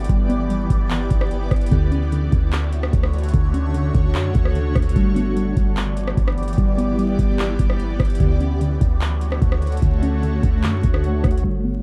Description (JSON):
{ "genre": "hip hop, atmospheric cloud-rap", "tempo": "148 BPM", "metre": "4/4", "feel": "half-time", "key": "unclear", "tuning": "A4 = 440 Hz", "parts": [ { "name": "shimmering ambient pad", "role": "sustained chords", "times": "0.0-11.8 s", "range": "D3 to D5", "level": "-28 LUFS", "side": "equal", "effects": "chorus, built-in reverb, phaser, low-pass filter" }, { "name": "warbly dusty pluck", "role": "arpeggios", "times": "0.0-11.8 s", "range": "D3 to C#4", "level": "-28 LUFS", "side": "equal", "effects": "chorus, low-pass filter, analog delay" }, { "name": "warm 808-style bass", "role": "bass", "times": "0.0-11.8 s", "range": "G1 to F#2", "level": "-24 LUFS", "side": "equal", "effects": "none" }, { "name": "booming analog drum machine", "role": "drums", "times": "0.0-11.4 s", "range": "handclaps, hi-hat, kick drum, rim click", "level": "-22 LUFS", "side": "equal", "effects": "overdrive" } ], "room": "light reverb", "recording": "dark, warm production, vinyl crackle", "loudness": "-19 LUFS", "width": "mono", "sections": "0.0-11.4 A section", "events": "none", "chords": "0.0 G6; 1.7 Dmaj7; 5.0 G6; 8.2 Dmaj7" }